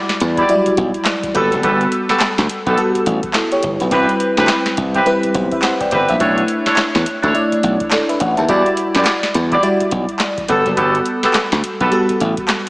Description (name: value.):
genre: R&B, new jack swing.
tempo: 105 BPM.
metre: 4/4.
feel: swing 61% on 16ths.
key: unclear.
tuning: A4 = 442 Hz.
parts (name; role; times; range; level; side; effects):
FM electric piano with soft pad layer; accompaniment; 0.0-12.7 s; F#3 to A5; -18 LUFS; equal; chorus, phaser, slapback echo.
booming analog drum machine; drums; 0.1-12.7 s; handclaps, hi-hat, kick drum, snare drum; -21 LUFS; equal; none.
slap bass; bass; 0.2-12.3 s; F#1 to F#2; -18 LUFS; equal; none.
warm horn section; stabs; 0.4-11.9 s; B3 to D5; -18 LUFS; equal; digital delay, slapback echo.
room: wet lush hall reverb, RT60 2.5 s.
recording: big arena sound, small speaker sound.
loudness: -13 LUFS.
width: side -23 dB against mid.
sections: 0.0-12.7 A section.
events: none.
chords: 0.0 Em9; 1.3 Gmaj9; 3.9 Cmaj7; 6.2 Bm11; 8.5 Em9; 10.5 Gmaj9.